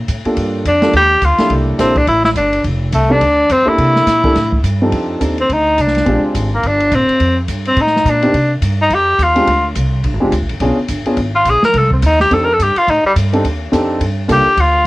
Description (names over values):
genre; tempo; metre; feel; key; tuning
jazz, small-group swing and bop; 211 BPM; 4/4; swing 60% on 8ths; F mixolydian; A4 = 440 Hz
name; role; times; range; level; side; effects
upright bass; bass; 0.0-14.8 s; F1 to C3; -17 LUFS; equal; none
open jazz drum kit; drums; 0.1-14.7 s; hi-hat, kick drum, ride cymbal, snare drum; -22 LUFS; equal; cassette tape
warm grand piano; accompaniment; 0.3-14.4 s; F3 to A4; -17 LUFS; equal; cassette tape
clear tenor saxophone; melody; 0.7-14.9 s; G3 to Bb4; -12 LUFS; equal; cassette tape
room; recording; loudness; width
small room ambience; home recording on cassette; -11 LUFS; side -20 dB against mid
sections
0.0-4.9 A section; 4.9-14.9 B section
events
tenor saxophone solo 4.9-14.9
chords
0.4 Gm7; 1.5 C13; 2.6 F69; 3.8 C13; 4.9 F13; 6.1 Bb13; 7.2 F13; 8.3 C5; 8.9 Fsus2; 9.5 Bb9; 10.6 Bdim7; 11.7 F13; 14.0 Gm7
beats
0.08 | 0.37 0.65 0.94 1.22 | 1.50 1.79 2.07 2.36 | 2.64 2.93 3.21 3.50 | 3.78 4.07 4.35 4.64 | 4.92 5.21 5.49 5.77 | 6.06 6.34 6.63 6.91 | 7.20 7.48 7.76 8.05 | 8.33 8.62 8.90 9.19 | 9.47 9.75 10.04 10.32 | 10.61 10.89 11.17 11.46 | 11.74 12.02 12.31 12.59 | 12.87 13.16 13.44 13.72 | 14.01 14.29 14.57 14.86